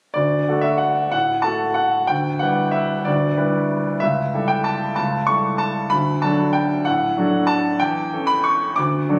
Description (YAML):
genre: classical, piano waltz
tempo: 188 BPM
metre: 3/4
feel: uneven beats, rubato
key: D major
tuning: A4 = 441 Hz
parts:
  - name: bright grand piano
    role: solo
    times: 0.1-9.2 s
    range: C#2 to D6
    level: -20 LUFS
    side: equal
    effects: none
room: moderate recital hall reverb, RT60 1.6 s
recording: recorded on a phone in the room, studio ambience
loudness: -20 LUFS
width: mono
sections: 0.1-9.2 A section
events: none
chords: 0.1 D; 2.1 Em7/D; 4.0 A7/C#; 5.9 D; 7.8 A7/E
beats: | 0.15 0.48 0.81 | 1.14 1.46 1.79 | 2.10 2.42 2.74 | 3.06 3.37 3.69 | 4.01 4.33 4.66 | 4.97 5.28 5.60 | 5.91 6.23 6.55 | 6.86 7.17 7.49 | 7.81 8.13 8.45 | 8.77 9.09